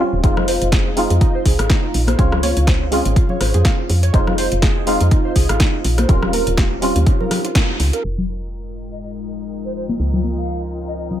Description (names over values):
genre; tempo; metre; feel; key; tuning
deep house; 123 BPM; 4/4; swing 56% on 16ths; F minor; A4 = 439 Hz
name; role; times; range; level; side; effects
percussive organ stab; stabs; 0.0-8.0 s; G3 to F4; -21 LUFS; equal; ensemble chorus, sidechain pumping, dub echo
woody FM bass; bass; 0.1-11.2 s; Eb1 to F2; -20 LUFS; equal; sidechain pumping
warbly dusty pluck; arpeggios; 0.2-8.0 s; Eb4 to Db5; -25 LUFS; right 5 dB; ensemble chorus, sidechain pumping, tape echo
deep house drum kit; drums; 0.2-8.0 s; hi-hat, rim click, snare drum; -23 LUFS; equal; overdrive
electronic kick drum; drums; 0.2-7.7 s; none; -16 LUFS; equal; overdrive
congas; percussion; 0.4-11.2 s; none; -24 LUFS; left 4 dB; none
deep dark ambient pad; sustained chords; 8.5-11.2 s; Ab3 to Eb5; -28 LUFS; left 2 dB; chorus, built-in reverb, sidechain pumping
muted chamber string section; texture; 8.0-11.2 s; F4 to G5; -34 LUFS; equal; sidechain pumping
breathy mellow jazz flute; melody; 8.9-11.1 s; C5 to F5; -31 LUFS; left 2 dB; tape echo
room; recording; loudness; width
little or no reverb; low-pass filter; -14 LUFS; side -11 dB against mid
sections
0.0-8.0 A section; 8.0-11.2 B section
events
band accent 7.6; filter sweep on ambient pad 8.0-11.2; filter sweep 8.0-11.2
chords
0.2 Fm7; 2.2 Dbmaj7; 4.1 Fm7; 6.1 Eb13; 8.0 Fm7; 10.0 Dbmaj7